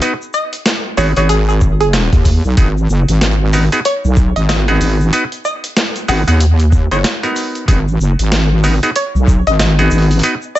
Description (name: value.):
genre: glitch hop.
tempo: 94 BPM.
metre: 4/4.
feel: swing 60% on 16ths.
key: G# minor.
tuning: A4 = 445 Hz.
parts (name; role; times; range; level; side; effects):
overdriven clav; stabs; 0.0-10.3 s; B3 to B4; -18 LUFS; equal; vintage 12-bit sampler grit, sidechain pumping, tape echo.
boom bap sampler-style drum kit; drums; 0.0-10.4 s; hi-hat, snare drum; -19 LUFS; equal; none.
tube shaker; percussion; 0.0-10.6 s; none; -32 LUFS; left 2 dB; none.
woody wave-folded pluck; melody; 0.3-10.6 s; G#4 to F#5; -19 LUFS; equal; wide subtle chorus, tape echo.
wobble bass; bass; 1.0-10.2 s; F#1 to D#2; -12 LUFS; equal; chorus, tube saturation.
electronic kick drum; drums; 1.6-9.4 s; none; -11 LUFS; equal; none.
room: little or no reverb.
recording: nothing above 8.0 kHz.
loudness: -11 LUFS.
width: side -14 dB against mid.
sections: 0.0-10.6 A section.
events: break 7.0-7.7.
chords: 0.0 G#m7.